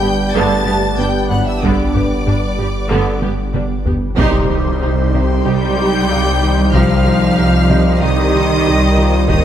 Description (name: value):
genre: cinematic, hybrid orchestral and electronic film score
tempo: 94 BPM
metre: 4/4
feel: straight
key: unclear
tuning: A4 = 439 Hz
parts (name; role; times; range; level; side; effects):
- warm symphonic violin section; melody; 0.0-9.4 s; C6 to A6; -25 LUFS; left 4 dB; none
- warm symphonic violin section; second line; 0.0-9.4 s; C5 to A5; -24 LUFS; left 2 dB; none
- rich symphonic viola section; accompaniment; 0.0-9.4 s; D3 to G4; -24 LUFS; right 2 dB; none
- dark French horn section; sustained chords; 0.0-9.4 s; D3 to G4; -26 LUFS; left 2 dB; none
- mellow trombone section; sustained chords; 0.0-9.4 s; G3 to Eb4; -23 LUFS; right 3 dB; none
- phased analog pad; sustained chords; 0.0-9.4 s; G3 to C5; -22 LUFS; equal; phaser, chorus
- thumb-piano-like synth pluck; arpeggios; 0.0-9.4 s; C3 to G4; -24 LUFS; right 1 dB; chorus, phaser, digital delay
- rich symphonic cello section; bass; 0.0-9.4 s; G2 to G3; -20 LUFS; right 1 dB; none
- rich symphonic double bass section; bass; 0.0-9.4 s; G1 to Eb2; -20 LUFS; right 2 dB; none
- saturated sub bass; bass; 0.0-9.4 s; Eb1 to C2; -20 LUFS; equal; none
- felt-muted upright piano; texture; 0.0-9.4 s; B3 to F5; -29 LUFS; left 3 dB; none
- taiko ensemble; drums; 1.3-9.4 s; none; -20 LUFS; equal; none
- impact; sound effects; 4.2-6.7 s; none; -26 LUFS; equal; none
room: moderate scoring stage reverb, RT60 1.9 s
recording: none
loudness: -12 LUFS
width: side -10 dB against mid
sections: 0.0-4.2 A section; 4.2-9.4 B section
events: drum fill 3.2-4.2; band accent 4.2-4.8; impact 4.2-6.7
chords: 0.0 G; 4.2 Cm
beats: 0.36 0.99 | 1.63 2.27 2.91 3.55 | 4.18 4.82 5.46 6.10 | 6.74 7.38 8.02 8.65 | 9.29